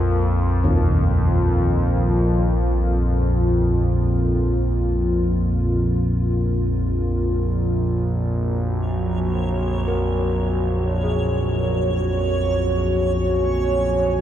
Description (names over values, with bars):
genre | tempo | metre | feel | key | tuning
dark ambient drone | free time | none | none | unclear | A4 = 441 Hz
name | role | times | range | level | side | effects
dark analog pad | sustained chords | 0.0-14.2 s | Bb3 to Ab5 | -25 LUFS | equal | chorus
analog drone | drone | 0.0-14.2 s | Bb1 to F2 | -20 LUFS | equal | chorus
gamelan-type bossed gongs | arpeggios | 0.6-14.2 s | Eb2 to Bb4 | -28 LUFS | left 1 dB | none
backwards swelling texture | texture | 9.2-14.2 s | Db5 | -30 LUFS | right 2 dB | built-in reverb
room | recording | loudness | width
moderate huge ambient reverb, RT60 7.6 s | dark, warm production | -18 LUFS | side -11 dB against mid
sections
0.0-14.2 A section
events
none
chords
0.0 Bb5; 8.3 Gb